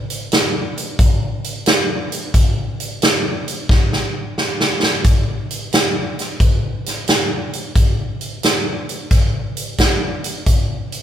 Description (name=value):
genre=blues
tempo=89 BPM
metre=4/4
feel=swing 68% on 8ths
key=none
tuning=none
part: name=swinging big-band drum kit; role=drums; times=0.1-11.0 s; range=hi-hat, kick drum, snare drum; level=-16 LUFS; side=equal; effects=none
room=light reverb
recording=band playing live in one room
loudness=-16 LUFS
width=side -10 dB against mid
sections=0.0-5.0 A section; 5.0-11.0 B section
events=drum fill 3.7-5.0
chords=none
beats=0.32 0.99 1.67 | 2.34 3.02 3.70 4.37 | 5.05 5.72 6.40 7.08 | 7.76 8.43 9.11 9.79 | 10.46